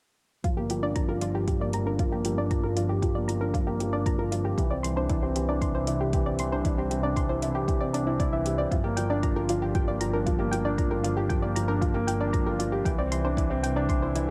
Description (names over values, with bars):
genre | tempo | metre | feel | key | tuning
piano and strings electronica | 116 BPM | 4/4 | straight | G dorian | A4 = 440 Hz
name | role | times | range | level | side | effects
soft round pluck | arpeggios | 0.4-14.2 s | E4 to C6 | -35 LUFS | equal | chorus, sidechain pumping, delay
felt-muted upright piano | riff | 0.4-14.3 s | E3 to G4 | -31 LUFS | equal | low-pass filter, delay
rich studio double bass section | bass | 0.4-14.3 s | G1 to C2 | -33 LUFS | equal | sidechain pumping
electronic hi-hat | drums | 0.4-14.3 s | none | -41 LUFS | equal | none
electronic kick drum | drums | 0.4-14.0 s | none | -30 LUFS | equal | none
room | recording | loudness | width
light reverb, small room ambience | dark, warm production | -27 LUFS | mono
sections
0.4-14.3 A section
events
filter sweep on felt piano 0.4-14.3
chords
0.4 Gm7; 4.6 Cadd9; 8.7 Gm7; 12.9 Cadd9